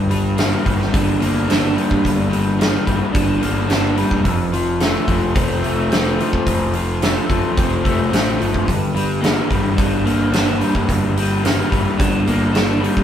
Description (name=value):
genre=classic rock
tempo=108 BPM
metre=4/4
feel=straight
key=G minor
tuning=A4 = 440 Hz
part: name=raw garage guitar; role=riff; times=0.0-13.0 s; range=F2 to D4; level=-18 LUFS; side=left 1 dB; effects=overdrive
part: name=fuzz picked electric bass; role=bass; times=0.0-13.0 s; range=E1 to G2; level=-22 LUFS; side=equal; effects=overdrive
part: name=huge arena drum kit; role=drums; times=0.1-13.0 s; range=hi-hat, kick drum, snare drum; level=-20 LUFS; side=equal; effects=none
room=moderate stone room reverb, RT60 1.2 s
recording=band playing live in one room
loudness=-15 LUFS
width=side -9 dB against mid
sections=0.0-13.0 A section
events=none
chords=0.0 Gm; 4.2 F; 8.7 Gm